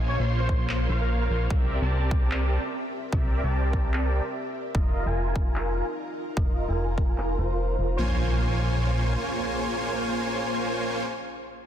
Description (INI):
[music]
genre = future bass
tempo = 148 BPM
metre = 4/4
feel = swing 55% on 16ths, half-time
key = Bb minor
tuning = A4 = 440 Hz
[part]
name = ethereal airy pad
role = sustained chords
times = 0.0-11.0 s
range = Bb3 to C6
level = -37 LUFS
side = equal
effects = ensemble chorus, built-in reverb, sidechain pumping
[part]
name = dense compressed supersaw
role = riff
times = 0.0-11.0 s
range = Bb3 to C6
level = -29 LUFS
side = equal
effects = sidechain pumping, low-pass filter, dub echo
[part]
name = fat analog bass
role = bass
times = 0.0-9.2 s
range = F1 to C2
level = -26 LUFS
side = equal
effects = sidechain pumping
[part]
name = warm velvety synth lead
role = melody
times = 0.1-1.4 s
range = Bb4 to Db5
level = -34 LUFS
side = equal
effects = chorus, sidechain pumping, tape echo
[part]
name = electronic kick drum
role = drums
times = 0.5-7.1 s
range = none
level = -25 LUFS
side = equal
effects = none
[part]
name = electronic handclaps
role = drums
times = 0.7-7.3 s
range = none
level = -36 LUFS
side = equal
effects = low-pass filter on snare
[part]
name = impact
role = sound effects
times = 8.0-11.1 s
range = none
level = -37 LUFS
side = equal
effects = none
[sound]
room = light reverb, digital ambience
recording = dense, heavily limited modern master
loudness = -24 LUFS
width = side -10 dB against mid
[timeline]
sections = 0.0-8.0 A section; 8.0-11.2 B section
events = filter sweep on drum 0.0-8.0; filter sweep on supersaw synth 0.0-8.0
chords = 0.0 Bbm7; 1.5 C7; 4.7 F7sus4; 8.0 Bbm7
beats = 0.29 0.69 1.10 | 1.50 1.91 2.31 2.72 | 3.12 3.53 3.94 4.34 | 4.75 5.15 5.56 5.96 | 6.37 6.77 7.18 7.58 | 7.99 8.39 8.80 9.21 | 9.61 10.02 10.42 10.83